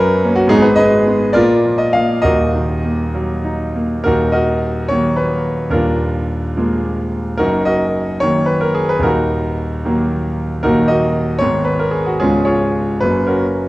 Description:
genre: classical, romantic character piece for solo piano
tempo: 65-79 BPM (dotted quarters)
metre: 6/8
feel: rubato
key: Eb minor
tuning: A4 = 442 Hz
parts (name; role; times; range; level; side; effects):
- clear concert grand piano; solo; 0.0-13.7 s; Db1 to F5; -13 LUFS; equal; none
room: wet recital hall reverb, RT60 1.7 s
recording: worn, warbling old tape, cassette tape, warbly pitch drift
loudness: -13 LUFS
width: side -18 dB against mid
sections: 0.0-4.1 A section; 4.1-13.7 B section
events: none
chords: 0.0 Gb; 0.5 Abm; 1.4 Bb; 2.3 Ebm; 5.7 Bb7/Eb; 7.4 Ebm/Gb; 9.0 Ebm; 11.4 Abm; 12.2 Db7; 13.0 Gb

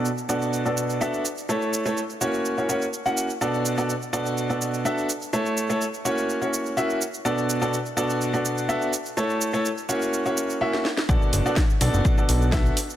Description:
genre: piano house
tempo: 125 BPM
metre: 4/4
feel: straight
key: B minor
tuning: A4 = 440 Hz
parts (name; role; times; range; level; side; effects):
- clear upright piano; riff; 0.0-12.8 s; B2 to F#5; -23 LUFS; equal; sidechain pumping, low-pass filter, dub echo
- house drum kit; drums; 0.1-13.0 s; hi-hat, shaker, snare drum; -30 LUFS; right 2 dB; none
- fat analog bass; bass; 11.1-12.7 s; F#1 to B1; -21 LUFS; equal; sidechain pumping
- electronic kick drum; drums; 11.1-12.6 s; none; -22 LUFS; equal; none
room: light reverb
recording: none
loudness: -22 LUFS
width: side -12 dB against mid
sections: 0.0-11.1 A section; 11.1-13.0 B section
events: drum fill 10.7-11.1; drop 11.1-13.0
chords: 0.0 Bm7; 1.2 A; 2.2 F#7; 3.4 Bm7; 5.1 A; 6.0 F#7; 7.2 Bm7; 8.9 A; 9.9 F#7; 11.1 Bm7

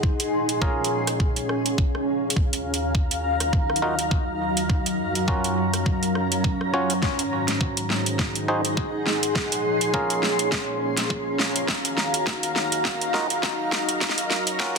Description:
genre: glitch hop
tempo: 103 BPM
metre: 4/4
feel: swing 57% on 16ths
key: Eb dorian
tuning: A4 = 441 Hz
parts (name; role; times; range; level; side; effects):
- warm analog pad; sustained chords; 0.0-14.8 s; Eb2 to F5; -32 LUFS; right 1 dB; chorus, sidechain pumping
- electronic kick drum; drums; 0.0-14.7 s; none; -24 LUFS; equal; small room ambience
- granular cloud pad; texture; 0.0-14.8 s; Gb3 to C6; -25 LUFS; equal; built-in reverb, sidechain pumping
- dubstep drum kit; drums; 0.2-14.8 s; hi-hat, rim click, snare drum; -26 LUFS; right 1 dB; small room ambience
- clav; stabs; 0.6-14.8 s; Db4 to Db5; -28 LUFS; equal; sidechain pumping, ping-pong delay
room: light reverb, digital ambience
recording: dense, heavily limited modern master, high-pass filter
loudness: -21 LUFS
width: side -4 dB against mid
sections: 0.0-14.8 A section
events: build-up 0.0-14.8; filter sweep on analog synth pad 0.0-14.8; filter sweep 0.0-14.8; drum fill 7.0-14.8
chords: 0.0 Bbm7; 2.4 Ebmadd9; 4.7 Gbmaj7; 7.0 Ab7; 9.4 Bbm7; 11.7 Ebmadd9; 14.0 Gbmaj7

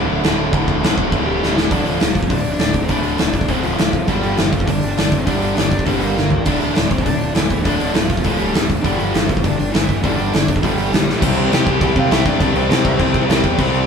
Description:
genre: punk rock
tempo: 202 BPM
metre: 4/4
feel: straight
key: D minor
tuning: A4 = 440 Hz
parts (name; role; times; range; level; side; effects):
- distorted electric guitar; riff; 0.0-13.9 s; D2 to C4; -24 LUFS; right 6 dB; overdrive
- tight distorted guitar; riff; 0.0-13.9 s; D2 to C4; -23 LUFS; left 4 dB; distortion
- fuzz picked electric bass; bass; 0.0-13.9 s; D1 to C3; -23 LUFS; equal; overdrive
- big rock drum kit; drums; 0.2-13.8 s; crash cymbal, hi-hat, kick drum, snare drum, toms; -18 LUFS; equal; none
- dark smooth lead guitar; melody; 1.3-13.9 s; E3 to G5; -23 LUFS; left 2 dB; overdrive
- fuzz guitar; riff; 1.7-13.9 s; D2 to C4; -27 LUFS; right 1 dB; none
room: light reverb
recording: band playing live in one room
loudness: -14 LUFS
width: side -6 dB against mid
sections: 0.0-1.7 A section; 1.7-11.2 B section; 11.2-13.9 C section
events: drum fill 1.4, 6.2, 11.1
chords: 0.0 D5; 4.1 Gm; 6.5 Dm; 8.8 G5; 11.2 C5

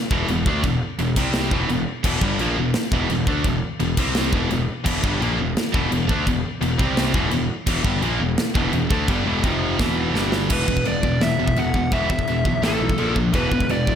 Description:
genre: heavy metal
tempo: 170 BPM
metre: 4/4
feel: straight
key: E minor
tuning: A4 = 440 Hz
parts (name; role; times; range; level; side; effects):
- scooped high-gain guitar; riff; 0.1-14.0 s; E2 to D4; -25 LUFS; right 8 dB; distortion, slapback echo
- tight distorted guitar; riff; 0.1-14.0 s; E2 to D4; -25 LUFS; left 8 dB; distortion
- fuzz picked electric bass; bass; 0.1-14.0 s; E1 to D2; -26 LUFS; equal; overdrive
- tight metal drum kit; drums; 0.1-14.0 s; china cymbal, crash cymbal, kick drum, snare drum; -24 LUFS; equal; none
- high-gain lead guitar; melody; 10.5-14.0 s; A4 to F#5; -24 LUFS; equal; distortion, slapback echo
room: moderate scoring stage reverb, RT60 1.4 s, studio reverb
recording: big arena sound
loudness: -18 LUFS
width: side -8 dB against mid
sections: 0.0-10.5 A section; 10.5-14.0 B section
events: drum fill 10.1-10.5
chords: 0.0 E5; 1.2 C5; 1.5 Em; 4.0 C5; 4.3 Em; 6.8 C5; 7.1 Em; 9.4 F5; 9.8 E5; 10.1 G5; 10.5 E5; 12.6 A5; 13.0 A#5; 13.3 E5

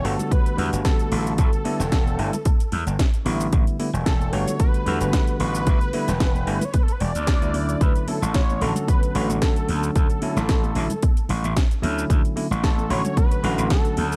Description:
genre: nu-disco, nu disco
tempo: 112 BPM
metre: 4/4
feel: swing 54% on 16ths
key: D major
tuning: A4 = 441 Hz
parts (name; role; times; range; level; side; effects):
- unison lead; melody; 0.0-14.2 s; A4 to D5; -32 LUFS; equal; analog delay
- bell-like tine electric piano; accompaniment; 0.0-14.2 s; D3 to F#4; -30 LUFS; equal; none
- gritty slap bass; bass; 0.0-14.2 s; E1 to E2; -27 LUFS; equal; overdrive
- house drum kit; drums; 0.0-14.2 s; hi-hat, shaker, snare drum; -34 LUFS; equal; none
- congas; percussion; 0.2-14.1 s; none; -35 LUFS; equal; none
- electronic kick drum; drums; 0.3-13.8 s; none; -22 LUFS; equal; none
room: digital ambience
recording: none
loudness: -22 LUFS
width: mono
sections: 0.0-14.2 A section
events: none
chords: 0.0 A9sus4; 7.8 Dmaj9

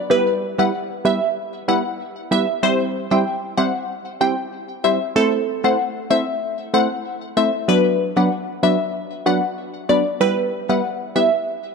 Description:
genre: dancehall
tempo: 95 BPM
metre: 4/4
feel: straight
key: E minor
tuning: A4 = 440 Hz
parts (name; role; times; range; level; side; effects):
- glassy wavetable pluck; melody; 0.1-11.4 s; A4 to G5; -21 LUFS; left 2 dB; chorus, tape echo
- punchy chord stab; accompaniment; 0.1-11.3 s; F#3 to C5; -21 LUFS; right 1 dB; chorus
room: moderate lush hall reverb, RT60 2.7 s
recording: dark, warm production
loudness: -18 LUFS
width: side -5 dB against mid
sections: 0.0-11.7 A section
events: none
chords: 0.1 Em; 2.6 C; 5.2 Am; 7.7 Bm; 10.2 Em

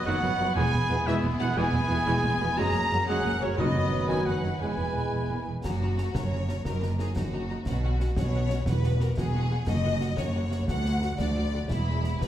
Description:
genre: cinematic, heroic adventure film score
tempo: 119 BPM (dotted quarters)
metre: 6/8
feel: straight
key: F# mixolydian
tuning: A4 = 439 Hz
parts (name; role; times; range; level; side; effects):
- rich studio violin section; melody; 0.0-12.3 s; C#5 to B5; -36 LUFS; left 2 dB; none
- clear clarinet; second line; 0.0-5.4 s; B3 to C#4; -36 LUFS; equal; none
- hollow small flute group; second line; 0.0-5.4 s; A#5 to B5; -38 LUFS; right 3 dB; none
- rich symphonic violin section; second line; 0.0-12.3 s; C#4 to F#5; -36 LUFS; left 4 dB; none
- warm cor anglais; second line; 0.0-5.4 s; F#4 to B4; -39 LUFS; right 1 dB; none
- warm trumpet; stabs; 0.0-5.5 s; C#5 to A#5; -31 LUFS; right 2 dB; none
- rich symphonic viola section; accompaniment; 0.1-12.3 s; D#3 to G#4; -34 LUFS; equal; none
- rich symphonic cello section; bass; 0.1-12.3 s; D2 to B2; -32 LUFS; right 1 dB; none
- rich symphonic double bass section; bass; 0.1-12.3 s; E1 to D2; -30 LUFS; right 1 dB; none
- warm French horn section; sustained chords; 0.4-5.5 s; A#3 to B4; -42 LUFS; left 2 dB; none
- warm trombone section; sustained chords; 0.4-5.5 s; F#2 to G#3; -35 LUFS; right 2 dB; none
- timpani; percussion; 3.6-4.1, 9.7-10.1 s; F#2; -32 LUFS; equal; none
- concert snare drum, clash cymbals and concert bass drum; drums; 5.6-12.3 s; none; -33 LUFS; equal; none
room: wet recital hall reverb, RT60 1.4 s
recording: heard from further back in the room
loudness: -24 LUFS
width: side -11 dB against mid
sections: 0.0-5.6 A section; 5.6-12.3 B section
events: none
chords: 0.0 B/F#; 0.6 E; 2.6 F#add9; 3.6 B/F#; 4.6 E; 5.6 F#; 6.7 D#m/F#; 7.7 Bsus2; 8.7 Eadd9; 9.7 F#; 10.7 D; 11.7 E

